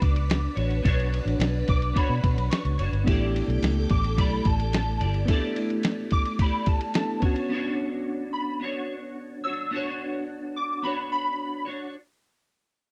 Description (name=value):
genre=indie pop, bedroom pop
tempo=108 BPM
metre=4/4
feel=straight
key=B minor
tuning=A4 = 439 Hz
part: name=warbly lo-fi synth keys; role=melody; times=0.0-11.6 s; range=A5 to E6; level=-33 LUFS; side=equal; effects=ensemble chorus, slapback echo
part: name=clean electric guitar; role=accompaniment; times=0.0-12.0 s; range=A3 to D5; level=-34 LUFS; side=equal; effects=ensemble chorus, warbly pitch drift
part: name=ensemble organ-string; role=sustained chords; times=0.0-5.3 s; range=D4 to D6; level=-38 LUFS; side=equal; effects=phaser, ensemble chorus
part: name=vintage muted fingered electric bass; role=bass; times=0.0-5.2 s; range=F#1 to B2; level=-28 LUFS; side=equal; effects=none
part: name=lo-fi sampler-style drum kit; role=drums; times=0.0-7.5 s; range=kick drum, ride cymbal, snare drum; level=-28 LUFS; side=equal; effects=none
part: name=reed electric piano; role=accompaniment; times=3.0-9.7 s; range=B3 to A4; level=-34 LUFS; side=equal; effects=overdrive, cassette tape
room=little or no reverb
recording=dry, close 1970s-style studio recording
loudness=-26 LUFS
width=mono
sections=0.0-11.9 A section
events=none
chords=0.0 Bmadd9; 3.1 A7sus4; 7.2 Bmadd9